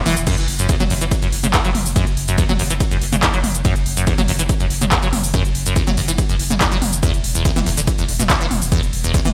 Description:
driving peak-time techno; 142 BPM; 4/4; straight; A4 = 440 Hz
saturated sub bass; bass; 0.0-9.3 s; E1 to F#1; -27 LUFS; equal; tube saturation, sidechain pumping, low-pass filter
acid bass, saw; riff; 0.1-9.3 s; D2 to F#3; -24 LUFS; equal; lush chorus, sidechain pumping, digital delay
techno drum kit; drums; 0.1-9.3 s; crash cymbal, handclaps, hi-hat, ride cymbal, shaker, toms; -23 LUFS; equal; overdrive, sidechain pumping on hats, sidechain pumping on cymbals, sidechain pumping on perc, sidechain pumping on toms, gated reverb
electronic kick drum; drums; 0.3-9.2 s; -22 LUFS; equal; overdrive
light reverb, digital ambience; bright 1980s-style digital production; -18 LUFS; mono
0.0-9.3 A section
0.3 F#5; 7.0 E5

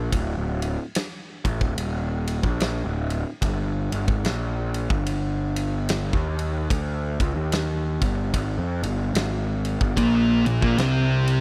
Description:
stoner and doom metal; 73 BPM; 4/4; swing 61% on 8ths; A4 = 440 Hz
fuzz picked electric bass; bass; 0.0-11.4 s; D1 to F2; -27 LUFS; equal; overdrive
big rock drum kit; drums; 0.1-11.4 s; kick drum, ride cymbal, snare drum; -30 LUFS; equal
thick fuzz guitar; riff; 10.0-11.4 s; Bb2 to C4; -25 LUFS; equal; distortion
thick fuzz guitar; riff; 10.0-11.4 s; Bb2 to C4; -24 LUFS; equal; distortion
studio reverb; dry, close 1970s-style studio recording; -24 LUFS; mono
0.0-11.4 A section
0.0 N.C.; 3.4 G5; 10.0 Bb5

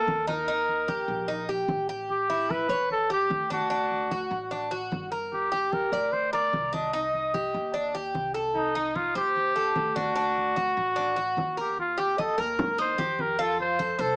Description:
latin, Cuban son and guajira; 149 BPM; 4/4; straight; A4 = 440 Hz
warm trumpet; melody; 0.0-14.2 s; Eb4 to Eb5; -29 LUFS; equal
Cuban tres; arpeggios; 0.0-14.2 s; Bb3 to Eb5; -32 LUFS; equal
upright bass; bass; 0.0-14.2 s; G1 to F2; -44 LUFS; equal
congas; percussion; 0.1-14.2 s; -38 LUFS; equal
moderate large studio reverb, RT60 0.9 s; small speaker sound; -28 LUFS; mono
0.0-11.8 A section; 11.8-14.2 B section
0.5 Eb; 2.1 A7; 3.7 D; 5.3 Gm; 6.9 Cmadd9; 8.6 Adim/C; 10.2 D; 11.8 Ebadd9; 13.4 F

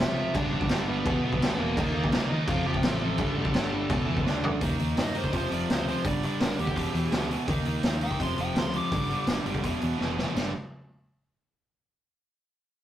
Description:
punk rock; 168 BPM; 4/4; straight; G mixolydian; A4 = 440 Hz
dark smooth lead guitar; melody; 0.0-9.8 s; Bb3 to D6; -34 LUFS; equal; overdrive
overdriven electric guitar; riff; 0.0-10.5 s; E2 to Eb4; -32 LUFS; left 3 dB
tight distorted guitar; riff; 0.0-10.5 s; E2 to Eb4; -33 LUFS; right 6 dB; distortion
picked electric bass; bass; 0.0-10.5 s; E1 to Eb3; -33 LUFS; equal
raw garage drum kit; drums; 0.0-10.4 s; crash cymbal, hi-hat, kick drum, snare drum, splash cymbal, toms; -28 LUFS; equal
moderate studio ambience, RT60 0.5 s; rough rehearsal-room recording, tube saturation; -25 LUFS; side -12 dB against mid
0.0-4.6 A section; 4.6-10.4 B section; 10.4-11.8 C section
drum fill 4.3-4.6, 10.0-10.4; lead electric guitar solo 4.6-10.4
0.3 G; 1.1 E5; 1.8 Eb5; 2.5 F; 3.2 G5; 3.9 E5; 4.3 D5; 4.6 Eb; 5.3 F5; 6.0 G5; 6.8 Em; 7.5 Eb5; 8.2 F5; 8.9 G5; 9.6 E5; 10.4 G5

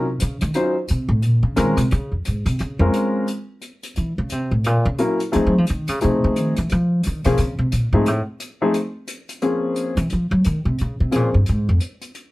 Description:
jazz piano trio; 176 BPM; 4/4; swing 62% on 8ths; Bb minor; A4 = 439 Hz
warm grand piano; melody; 0.0-11.3 s; F3 to C5; -20 LUFS; left 1 dB
upright bass; bass; 0.0-11.8 s; F2 to Gb3; -18 LUFS; equal
hi-hat; drums; 0.2-12.2 s; -34 LUFS; left 2 dB
light reverb; lossy compression artefacts; -18 LUFS; side -19 dB against mid
0.0-9.4 A section; 9.4-12.3 A section
upright bass solo 0.0-12.3
0.0 N.C.; 1.2 Bbm9; 4.0 Gb7 (rootless); 5.3 F7#9; 6.7 Bbm9; 8.1 N.C.; 9.4 Bbm9

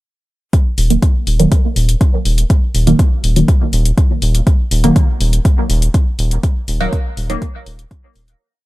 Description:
dub techno; 122 BPM; 4/4; straight; Eb minor; A4 = 440 Hz
electronic hi-hat; drums; 0.5-8.4 s; -24 LUFS; left 3 dB; overdrive
electronic kick drum; drums; 0.5-8.0 s; -12 LUFS; equal; overdrive
round analog bass; bass; 0.8-8.3 s; Eb1; -14 LUFS; equal; sidechain pumping
filtered dub chord stab; stabs; 0.9-7.5 s; Eb3 to Bb3; -17 LUFS; right 1 dB; phaser, cassette tape, sidechain pumping, dub echo
little or no reverb; -12 LUFS; side -18 dB against mid
0.5-8.4 groove
filter sweep on synth stab 0.5-8.4; fade-out 5.8-8.4
0.5 Ebm

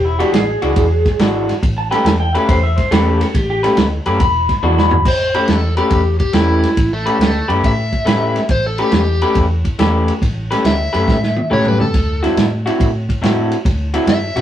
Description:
electric blues shuffle; 140 BPM; 4/4; swing 68% on 8ths; A mixolydian; A4 = 440 Hz
electric guitar through a small old amp; second line; 0.0-5.1 s; E4 to B5; -18 LUFS; left 1 dB
vintage muted fingered electric bass; bass; 0.0-14.4 s; E1 to B2; -19 LUFS; equal
electric guitar through a small old amp; riff; 0.2-14.4 s; D3 to B4; -17 LUFS; left 1 dB
vintage drum kit; drums; 0.2-14.4 s; crash cymbal, kick drum, ride cymbal, snare drum, toms; -18 LUFS; right 1 dB
overdriven slide guitar; melody; 5.1-14.4 s; A3 to E5; -19 LUFS; left 1 dB
moderate small room reverb, RT60 0.5 s; rough rehearsal-room recording; -13 LUFS; side -11 dB against mid
0.0-5.1 A section; 5.1-14.4 A section
clean electric guitar solo 0.0-5.1; drum fill 4.6-5.1, 11.1-11.9; electric slide guitar solo 5.1-14.4
0.0 E9; 1.6 A9; 4.2 E9; 5.1 A9; 11.9 D9

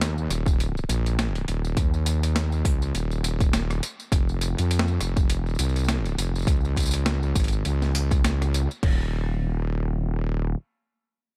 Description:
glitch hop; 102 BPM; 4/4; swing 57% on 16ths; A4 = 440 Hz
wobble bass; bass; 0.0-10.6 s; Eb1 to F2; -27 LUFS; equal; chorus, overdrive
boom bap sampler-style drum kit; drums; 0.0-9.0 s; crash cymbal, hi-hat, rim click, snare drum, tambourine; -32 LUFS; equal; small room ambience
electronic kick drum; drums; 0.5-9.0 s; -25 LUFS; equal; small room ambience
digital ambience; dark, warm production; -25 LUFS; mono
0.0-8.8 A section; 8.8-11.2 B section
drop 0.0-8.8

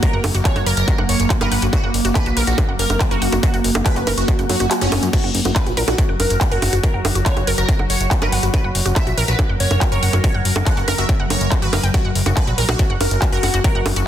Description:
psychedelic trance; 141 BPM; 4/4; straight; F# major; A4 = 441 Hz
supersaw stab; melody; 0.0-13.8 s; C#4 to F#5; -25 LUFS; equal; phaser, sidechain pumping, tape echo
evolving wavetable pad; sustained chords; 0.0-14.1 s; F#3 to A#4; -25 LUFS; right 2 dB; chorus, built-in reverb, sidechain pumping
wide unison pluck; riff; 0.0-14.0 s; F#4 to G5; -26 LUFS; equal; auto-pan, cassette tape, sidechain pumping, tape echo
electronic kick drum; drums; 0.0-13.7 s; -18 LUFS; equal; distortion, small room ambience
techno drum kit; drums; 0.0-14.0 s; bongos, crash cymbal, handclaps, hi-hat; -23 LUFS; equal; small room ambience
fat analog bass; bass; 0.1-14.0 s; F#1 to F#2; -20 LUFS; equal
swell and zap; sound effects; 4.4-5.1 s; -30 LUFS; equal
light reverb; dense, heavily limited modern master; -15 LUFS; side -10 dB against mid
0.0-14.1 A section
kick drops out 4.7-5.1
0.0 F#add11

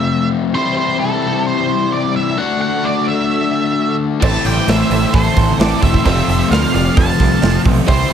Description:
classic rock; 131 BPM; 4/4; straight; A4 = 440 Hz
octave-fuzz lead guitar; melody; 0.0-8.1 s; A4 to A5; -20 LUFS; right 3 dB; distortion, slapback echo
string machine, full ensemble; sustained chords; 0.0-8.1 s; G3 to C5; -26 LUFS; right 2 dB; ensemble chorus
overdriven electric guitar; riff; 0.0-8.1 s; F2 to F#4; -18 LUFS; left 7 dB; spring reverb
honky-tonk upright piano; accompaniment; 4.2-8.1 s; C4 to D5; -25 LUFS; right 5 dB
cranked stack guitar; riff; 4.2-8.1 s; F2 to F4; -23 LUFS; right 14 dB; overdrive
growling picked electric bass; bass; 4.2-8.1 s; E1 to D2; -18 LUFS; right 2 dB; overdrive
big rock drum kit; drums; 4.2-8.0 s; crash cymbal, hi-hat, kick drum, snare drum; -16 LUFS; right 1 dB
octave-fuzz lead guitar; second line; 4.3-8.1 s; G4 to F5; -26 LUFS; right 6 dB; distortion
studio reverb; -13 LUFS; side -8 dB against mid
0.0-8.1 A section
0.0 F; 0.6 C; 2.4 D; 4.2 Am; 6.0 F

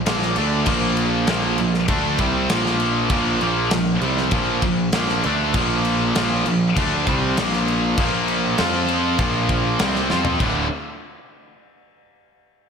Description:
heavy metal; 99 BPM; 4/4; straight; A4 = 440 Hz
fuzz picked electric bass; bass; 0.0-10.7 s; D1 to F2; -25 LUFS; left 1 dB; overdrive
heavy high-gain guitar; riff; 0.1-10.6 s; D2 to F4; -23 LUFS; right 9 dB; distortion, slapback echo
scooped high-gain guitar; riff; 0.1-10.7 s; D2 to F4; -24 LUFS; left 10 dB; distortion
tight metal drum kit; drums; 0.1-10.5 s; crash cymbal, kick drum, snare drum, toms; -25 LUFS; left 1 dB
high-gain distorted guitar; riff; 0.7-10.6 s; D2 to F4; -26 LUFS; left 2 dB; distortion, slapback echo
moderate lush hall reverb, RT60 2.2 s; big arena sound; -17 LUFS; side -6 dB against mid
0.0-10.4 A section; 10.4-12.7 B section
drum fill 10.1-10.4
0.0 Bb5; 8.6 F5; 9.2 Bb5; 10.4 D5

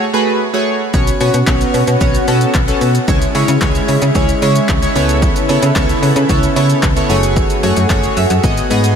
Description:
dance-pop; 112 BPM; 4/4; straight; A4 = 440 Hz
chorused retro synth keys; accompaniment; 0.0-9.0 s; G#3 to G#5; -16 LUFS; right 1 dB
lush unison pad; sustained chords; 0.9-9.0 s; C#3 to B4; -18 LUFS; equal; chorus, sidechain pumping
slap-like FM bass; bass; 0.9-9.0 s; F#1 to C#3; -16 LUFS; equal; sidechain pumping
punchy analog drum machine; drums; 0.9-9.0 s; handclaps, hi-hat, kick drum, shaker; -17 LUFS; equal; overdrive
moderate huge ambient reverb, RT60 6.6 s; dreamy mix soaked in reverb; -11 LUFS; side -7 dB against mid
0.0-9.0 A section
synth keys fill 7.9-9.0
0.0 F#madd9; 0.9 Bsus2; 3.1 C#m; 5.0 Aadd9/C#; 7.1 F#madd9; 8.4 G#m7

